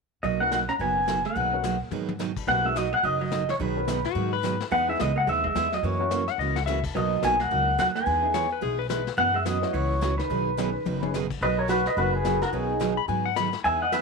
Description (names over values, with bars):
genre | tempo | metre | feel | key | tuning
country, western swing | 215 BPM | 4/4 | swing 60% on 8ths | B major | A4 = 439 Hz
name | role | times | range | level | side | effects
pedal steel guitar | melody | 0.2-14.0 s | D#4 to A#5 | -25 LUFS | equal | none
vintage hollow-body jazz guitar | second line | 0.2-11.1 s | D#3 to C#4 | -35 LUFS | right 13 dB | tape echo
picked steel-string acoustic guitar | accompaniment | 0.2-14.0 s | B2 to G#4 | -32 LUFS | right 12 dB | none
upright bass | bass | 0.2-14.0 s | F#1 to G#2 | -31 LUFS | left 1 dB | none
vintage brush drum kit | drums | 0.2-14.0 s | brushed snare drum, crash cymbal, hi-hat, kick drum, snare drum, toms | -36 LUFS | left 10 dB | none
clear upright piano | accompaniment | 0.4-13.0 s | B3 to B4 | -35 LUFS | left 13 dB | none
clean lap steel guitar | second line | 4.1-9.1, 13.0-13.6 s | F#4 to B5 | -29 LUFS | left 14 dB | none
room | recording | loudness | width
light reverb | 1960s-style stereo with parts hard left and right | -23 LUFS | side -4 dB against mid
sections
0.2-2.5 A section; 2.5-11.4 B section; 11.4-14.0 B section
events
drum fill 1.9, 6.4, 10.9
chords
0.2 Bmaj7; 1.4 G#m9/B; 2.5 Bmaj7; 3.6 G#m7/B; 4.7 Emaj7; 5.8 F#7; 7.0 Bmaj7; 8.1 Emaj7; 9.2 F#7sus4; 10.3 B69; 11.4 Bmaj7; 12.5 G#m11/B